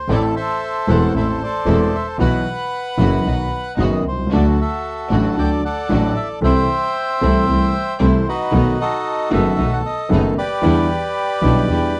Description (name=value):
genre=tango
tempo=114 BPM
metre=4/4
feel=rubato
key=unclear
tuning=A4 = 440 Hz
part: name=bandoneon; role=melody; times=0.0-12.0 s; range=D#4 to G5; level=-24 LUFS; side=equal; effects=none
part: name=warm grand piano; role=accompaniment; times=0.1-11.9 s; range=E1 to A4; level=-22 LUFS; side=equal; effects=none
part: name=rich chamber string section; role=stabs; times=0.1-11.9 s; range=G3 to A4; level=-29 LUFS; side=equal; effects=none
part: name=clear double bass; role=bass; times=0.1-11.9 s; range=E1 to E2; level=-22 LUFS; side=equal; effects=none
room=light reverb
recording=dry, close 1970s-style studio recording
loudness=-18 LUFS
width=mono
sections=0.0-12.0 A section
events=none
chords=0.1 Am; 2.2 Bsus4; 3.3 B; 4.3 D; 6.4 Am/C; 8.5 B7; 10.6 Em7